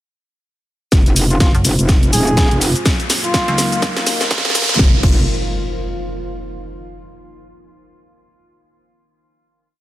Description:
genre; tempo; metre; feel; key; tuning
bass house; 124 BPM; 4/4; swing 59% on 16ths; F phrygian; A4 = 440 Hz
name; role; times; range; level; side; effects
dark analog pad; sustained chords; 0.9-5.0 s; Gb3 to C5; -28 LUFS; left 1 dB; none
metallic wobble bass; bass; 0.9-5.3 s; Eb1 to Gb1; -16 LUFS; equal; chorus, sidechain pumping
dusty soul sampler-style drum kit; drums; 0.9-4.7 s; hi-hat, snare drum; -28 LUFS; left 1 dB; none
electronic kick drum; drums; 0.9-5.1 s; none; -14 LUFS; equal; overdrive
house drum kit; drums; 0.9-5.1 s; crash cymbal, hi-hat, shaker, snare drum; -19 LUFS; equal; overdrive, high-pass filter on snare, high-pass filter on hats, high-pass filter on perc, high-pass filter on cymbals, high-pass filter on room
riser and impact; sound effects; 2.5-6.7 s; none; -22 LUFS; equal; none
deep dark ambient pad; texture; 2.3-6.7 s; Eb4 to F5; -28 LUFS; equal; chorus, built-in reverb, sidechain pumping
trumpet with bucket mute; melody; 1.3-3.9 s; F4 to Ab4; -24 LUFS; equal; dub echo
metallic FM bass; bass; 1.5-3.9 s; Gb1 to Db2; -20 LUFS; equal; overdrive, sidechain pumping
room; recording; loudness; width
light reverb; high-pass filter; -13 LUFS; side -15 dB against mid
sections
0.9-4.8 build; 4.8-6.7 final chord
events
build-up 0.9-4.8; drum fill 0.9-4.8; filter sweep on analog synth pad 0.9-4.8; filter sweep 0.9-4.8; riser 2.5-4.8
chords
0.9 Fm; 2.9 Ebm; 4.8 Fm

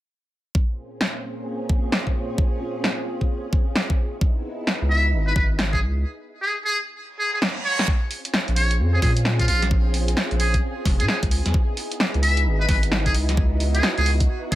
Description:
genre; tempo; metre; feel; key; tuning
UK garage, two-step garage; 131 BPM; 4/4; swing 63% on 16ths; unclear; A4 = 440 Hz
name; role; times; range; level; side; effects
soft string machine; sustained chords; 0.8-14.6 s; Bb2 to Ab4; -31 LUFS; equal; ensemble chorus, sidechain pumping
electronic kick drum; drums; 0.5-14.6 s; none; -21 LUFS; equal; none
punchy analog drum machine; drums; 1.0-14.6 s; hi-hat, snare drum; -24 LUFS; equal; none
saturated sub bass; bass; 4.8-14.6 s; F1 to Bb2; -21 LUFS; equal; none
trumpet with metal mute; melody; 4.9-14.6 s; F4 to Fb5; -25 LUFS; equal; digital delay
reverse cymbal; sound effects; 7.2-7.9 s; none; -31 LUFS; right 4 dB; none
room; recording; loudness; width
light reverb, digital ambience; none; -20 LUFS; side -15 dB against mid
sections
0.5-7.9 A section; 7.9-14.6 B section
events
break 6.0-7.9; reverse cymbal 7.2-7.9; drum fill 7.4-7.9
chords
0.5 Bbm7; 4.0 Dbm7; 7.9 Bbm7; 11.3 Dbm7

